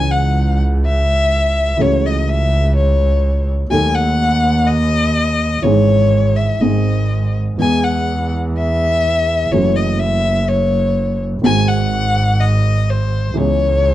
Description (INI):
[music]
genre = tango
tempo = 125 BPM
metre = 4/4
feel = rubato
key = C# minor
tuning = A4 = 440 Hz
[part]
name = warm violin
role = second line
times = 0.0-13.9 s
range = B#4 to G#5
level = -18 LUFS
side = left 3 dB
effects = none
[part]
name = dark upright piano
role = accompaniment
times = 0.0-13.9 s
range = G#1 to A4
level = -19 LUFS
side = right 1 dB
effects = none
[part]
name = clear double bass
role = bass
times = 0.0-13.9 s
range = F#1 to E2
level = -16 LUFS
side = right 1 dB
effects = none
[sound]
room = light reverb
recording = dark, warm production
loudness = -13 LUFS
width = side -14 dB against mid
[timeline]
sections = 0.0-13.9 A section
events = violin solo 0.0-13.9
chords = 0.0 C#m; 1.8 F#m7/C#; 3.7 D#dim; 5.6 C#m/G#; 6.6 G#; 7.6 E; 9.5 F#m7; 11.4 G#7; 13.4 C#m7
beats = 0.35 0.83 1.31 | 1.79 2.27 2.75 3.23 | 3.71 4.20 4.68 5.16 | 5.64 6.13 6.62 7.11 | 7.60 8.09 8.57 9.05 | 9.54 10.02 10.49 10.97 | 11.45 11.92 12.40 12.88 | 13.36 13.84